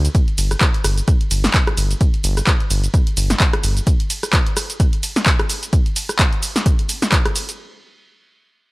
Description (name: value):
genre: acid house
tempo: 129 BPM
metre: 4/4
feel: swing 56% on 16ths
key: unclear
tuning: A4 = 439 Hz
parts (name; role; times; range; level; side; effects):
- round analog bass; bass; 0.0-3.8 s; G1; -18 LUFS; equal; tube saturation, sidechain pumping
- punchy analog drum machine; drums; 0.0-7.6 s; handclaps, hi-hat, ride cymbal, rim click, shaker, snare drum; -20 LUFS; equal; none
- electronic kick drum; drums; 0.1-7.2 s; none; -16 LUFS; equal; none
room: little or no reverb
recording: dry, gritty hardware recording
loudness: -15 LUFS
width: side -23 dB against mid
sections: 0.0-7.6 A section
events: drop 0.0-7.6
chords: none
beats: | 0.15 0.61 1.08 1.54 | 2.01 2.47 2.94 3.40 | 3.87 4.33 4.80 5.26 | 5.73 6.19 6.66 7.12